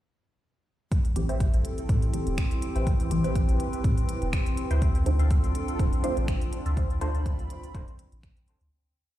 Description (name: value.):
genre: dub techno.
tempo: 123 BPM.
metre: 4/4.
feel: swing 54% on 16ths.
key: A minor.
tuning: A4 = 440 Hz.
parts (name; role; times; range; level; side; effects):
dark analog pad; sustained chords; 1.3-8.7 s; C4 to B5; -35 LUFS; equal; chorus, sidechain pumping.
deep house drum kit; drums; 0.9-8.7 s; finger snaps, hi-hat; -42 LUFS; equal; none.
electronic kick drum; drums; 0.9-8.3 s; none; -26 LUFS; equal; none.
drifting glass-harmonics texture; texture; 1.4-8.7 s; C4; -38 LUFS; equal; chorus, built-in reverb, sidechain pumping.
filtered dub chord stab; stabs; 1.2-8.7 s; E3 to C5; -34 LUFS; equal; chorus, phaser, sidechain pumping, dub echo.
soft dub sub bass; bass; 1.2-8.7 s; D1 to A2; -27 LUFS; equal; sidechain pumping.
filtered dub chord stab; riff; 1.3-7.2 s; B4 to C6; -40 LUFS; left 1 dB; phaser, analog chorus, sidechain pumping, dub echo.
room: little or no reverb.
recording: played on a big sound system in a bare room, large studio reverb.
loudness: -24 LUFS.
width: side -14 dB against mid.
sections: 0.9-8.7 groove.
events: filter sweep on synth stab 0.9-8.7; fade-out 6.1-8.7.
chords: 0.9 Am7; 4.8 Dm7.